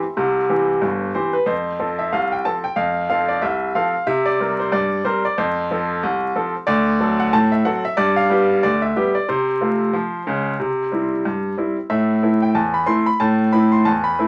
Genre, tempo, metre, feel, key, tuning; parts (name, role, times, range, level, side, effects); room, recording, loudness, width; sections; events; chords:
ragtime piano; 92 BPM; 2/4; swing 58% on 16ths; F major; A4 = 440 Hz
bright baby grand piano; solo; 0.0-14.3 s; G1 to C6; -19 LUFS; equal
wet club reverb, RT60 0.5 s; vinyl crackle; -19 LUFS; mono
0.0-1.5 A section; 1.5-14.3 B section
0.0 C; 1.5 F; 4.1 C5; 5.4 F; 6.7 D7; 8.0 G; 9.3 F/C; 10.6 C; 11.9 Am